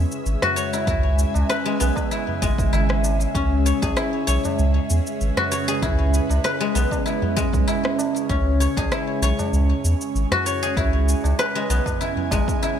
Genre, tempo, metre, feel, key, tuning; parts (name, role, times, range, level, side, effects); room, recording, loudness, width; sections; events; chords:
organic downtempo; 97 BPM; 4/4; swing 53% on 16ths; A4 = 440 Hz
ethereal airy pad; sustained chords; 0.0-12.8 s; C#3 to G#5; -26 LUFS; right 3 dB; ensemble chorus, built-in reverb, phaser, sidechain pumping
guzheng; arpeggios; 0.0-12.8 s; G#3 to C#5; -24 LUFS; left 2 dB; ping-pong delay
warm sub bass; bass; 0.0-12.4 s; G#1 to E2; -20 LUFS; equal; sidechain pumping
electronic shaker and rim click; drums; 0.1-12.8 s; -29 LUFS; equal; overdrive, studio reverb
tabla; percussion; 0.4-12.8 s; -32 LUFS; equal
electronic kick drum; drums; 0.9-12.6 s; -26 LUFS; equal; overdrive, studio reverb
light reverb; -19 LUFS; side -9 dB against mid
0.0-12.8 A section
0.0 E69/G#